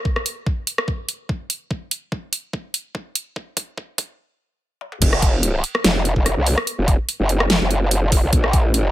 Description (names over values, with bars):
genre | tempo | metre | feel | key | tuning
heavy wobble dubstep | 145 BPM | 4/4 | swing 54% on 16ths, half-time | unclear | A4 = 440 Hz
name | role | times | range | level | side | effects
electronic kick drum | drums | 0.1-8.6 s | none | -20 LUFS | equal | overdrive
dubstep drum kit | drums | 0.2-8.8 s | crash cymbal, hi-hat, rim click, snare drum, toms | -21 LUFS | equal | overdrive, high-pass filter on hats, high-pass filter on snare, high-pass filter on toms, high-pass filter on cymbals, high-pass filter on room
growl bass | bass | 5.0-8.9 s | F1 to C2 | -18 LUFS | equal | chorus, overdrive
room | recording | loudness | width
little or no reverb | high-pass filter | -18 LUFS | side -14 dB against mid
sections
0.0-5.0 A section; 5.0-8.9 B section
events
build-up 0.0-5.0; filter sweep 0.0-5.0; drum fill 1.7-4.2, 4.8; stop 4.2-5.0; drop 5.0-8.9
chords
none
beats
| 0.05 0.47 0.88 1.29 | 1.71 2.12 2.53 2.95 | 3.36 3.77 4.19 4.60 | 5.02 5.43 5.84 6.26 | 6.67 7.09 7.50 7.91 | 8.33 8.74